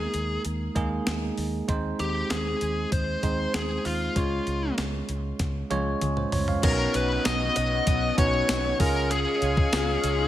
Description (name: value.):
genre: 1980s-style pop.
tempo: 97 BPM.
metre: 4/4.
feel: straight.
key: unclear.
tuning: A4 = 440 Hz.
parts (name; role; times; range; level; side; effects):
bluesy overdriven lead guitar; melody; 0.0-10.3 s; F4 to D#5; -28 LUFS; left 2 dB; distortion, digital delay.
bell-like tine electric piano; accompaniment; 0.0-10.3 s; Ab3 to F5; -30 LUFS; right 3 dB; none.
vintage muted fingered electric bass; bass; 0.0-10.3 s; B1 to Eb2; -30 LUFS; equal; none.
clean 12-bit digital drum machine; drums; 0.1-10.2 s; crash cymbal, hi-hat, kick drum, snare drum, tambourine, toms; -28 LUFS; equal; gated reverb.
crunchy overdriven guitar; accompaniment; 6.6-10.3 s; B2 to Db4; -37 LUFS; left 4 dB; ensemble chorus.
phased analog pad; sustained chords; 7.0-10.3 s; Ab3 to C#6; -33 LUFS; left 2 dB; phaser, chorus.
marimba with hard mallets; second line; 9.7-10.3 s; Eb4 to F4; -33 LUFS; left 10 dB; none.
room: light reverb, digital ambience.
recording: none.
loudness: -23 LUFS.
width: side -13 dB against mid.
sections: 0.0-6.6 A section; 6.6-10.3 B section.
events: drum fill 5.4-6.6.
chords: 0.0 Ebsus4; 1.7 Ab/Eb; 4.2 Db; 6.6 Badd9; 8.8 Db.